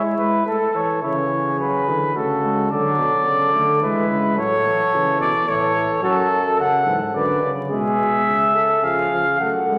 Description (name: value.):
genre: classical, imitative canzona for brass ensemble.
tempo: 108 BPM.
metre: 3/4.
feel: straight.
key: unclear.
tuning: A4 = 441 Hz.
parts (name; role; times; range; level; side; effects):
mellow trumpet; melody; 0.0-9.8 s; A4 to F#5; -22 LUFS; equal; none.
mellow flugelhorn; second line; 0.0-9.8 s; E4 to B4; -26 LUFS; equal; none.
warm trombone; accompaniment; 0.0-9.8 s; C#3 to A3; -28 LUFS; equal; none.
warm bass trombone; bass; 1.0-9.8 s; F#2 to E3; -29 LUFS; equal; none.
room: wet recital hall reverb, RT60 1.5 s.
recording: vinyl crackle.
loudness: -19 LUFS.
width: mono.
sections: 0.0-1.0 A section; 1.0-9.8 B section.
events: none.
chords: 0.5 A; 1.0 C#m; 2.2 F#m/C#; 2.7 D; 3.8 E; 4.4 A; 6.0 F#m; 7.1 Bm/F#; 7.7 E/B; 8.3 C#m; 8.8 C#.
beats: 0.46 | 1.03 1.59 2.16 | 2.71 3.26 3.82 | 4.38 4.93 5.48 | 6.03 6.59 7.14 | 7.70 8.26 8.83 | 9.40.